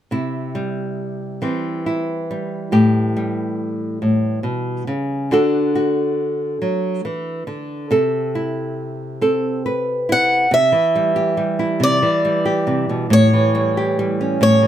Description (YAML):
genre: folk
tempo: 46 BPM (dotted quarters)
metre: 6/8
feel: straight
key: unclear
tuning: A4 = 440 Hz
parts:
  - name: nylon-string guitar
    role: accompaniment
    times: 0.1-14.7 s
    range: A2 to B4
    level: -18 LUFS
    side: equal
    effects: none
  - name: picked swing-style acoustic guitar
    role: melody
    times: 10.1-14.7 s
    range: C#5 to F#5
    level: -17 LUFS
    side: right 1 dB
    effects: none
room: light reverb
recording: close, detailed microphones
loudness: -16 LUFS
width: side -10 dB against mid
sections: 0.1-10.5 A section; 10.5-14.7 B section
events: none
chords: 0.1 C; 2.7 A7; 5.3 Dadd9; 7.9 Am/C; 10.5 C; 13.1 A7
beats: | 0.10 1.42 | 2.73 4.03 | 5.32 6.61 | 7.90 9.20 | 10.51 11.80 | 13.10 14.40